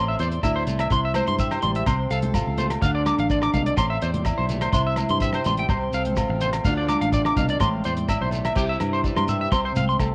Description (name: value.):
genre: highlife guitar band.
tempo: 125 BPM.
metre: 4/4.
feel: straight.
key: C major.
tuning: A4 = 440 Hz.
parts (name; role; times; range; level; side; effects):
picked old ladder-braced acoustic guitar; accompaniment; 0.0-10.1 s; A2 to D5; -30 LUFS; equal; none.
electric guitar at the edge of break-up; arpeggios; 0.0-10.0 s; G4 to D6; -28 LUFS; equal; tape echo.
fingered electric bass; bass; 0.0-10.1 s; A1 to G2; -29 LUFS; equal; none.
cloth-damped thuddy drum kit; drums; 0.2-10.1 s; crash cymbal, hi-hat, kick drum, rim click; -30 LUFS; equal; cassette tape.
shekere; percussion; 0.2-10.1 s; none; -34 LUFS; equal; none.
agogo bells; percussion; 0.4-10.1 s; none; -35 LUFS; equal; none.
congas; percussion; 1.1-9.9 s; none; -35 LUFS; equal; none.
room: light reverb, small room ambience.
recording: home recording on cassette.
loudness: -23 LUFS.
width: mono.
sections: 0.0-8.6 A section; 8.6-10.1 B section.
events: none.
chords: 0.0 Am; 0.9 C; 1.9 F/C; 2.8 Dm; 3.8 Am; 4.7 C; 5.7 F/C; 6.7 Dm; 7.6 Am; 8.6 C; 9.5 F/C (rootless).